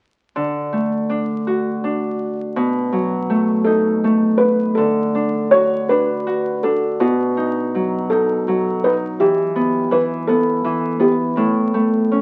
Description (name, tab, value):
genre	children's music, lullaby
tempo	54 BPM (dotted quarters)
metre	6/8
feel	rubato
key	D major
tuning	A4 = 442 Hz
part	Celtic harp	accompaniment	0.4-12.2 s	A2 to F#4	-20 LUFS	equal	none
part	felt-muted upright piano	melody	3.6-12.2 s	E4 to C#5	-20 LUFS	equal	none
room	moderate studio reverb, RT60 0.8 s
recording	very old 78 rpm record, vinyl crackle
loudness	-18 LUFS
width	mono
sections	0.4-4.8 A section; 4.8-12.2 B section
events	none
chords	0.4 D; 2.6 B7; 4.8 D; 7.0 B7; 9.2 Em; 11.4 A5